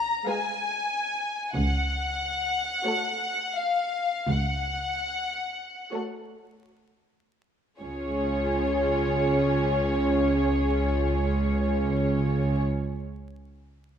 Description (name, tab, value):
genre	classical, slow romantic movement for string orchestra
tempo	30-47 BPM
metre	4/4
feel	rubato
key	Db major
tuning	A4 = 439 Hz
part	rich studio violin section	melody	0.0-12.6 s	Db5 to Bb5	-29 LUFS	left 3 dB	none
part	warm studio double bass section	bass	0.0-12.6 s	Db2	-29 LUFS	right 1 dB	none
part	warm symphonic cello section	bass	0.0-12.6 s	Db2	-29 LUFS	right 2 dB	none
part	dark studio violin section	second line	0.3-12.6 s	Ab4 to F5	-30 LUFS	left 1 dB	none
part	warm studio viola section	accompaniment	0.3-12.6 s	Ab3 to Ab4	-30 LUFS	right 2 dB	none
room	moderate scoring stage reverb, RT60 1.7 s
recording	minimal, uncompressed stereo recording, vinyl crackle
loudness	-24 LUFS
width	side -8 dB against mid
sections	0.0-7.8 A section; 7.8-14.0 B section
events	slowing down 0.0-7.8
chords	0.0 Db7 (rootless); 1.6 Gbm/Db; 7.8 Db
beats	0.27 | 1.55 2.86 4.28 5.93 | 7.81 9.56 11.30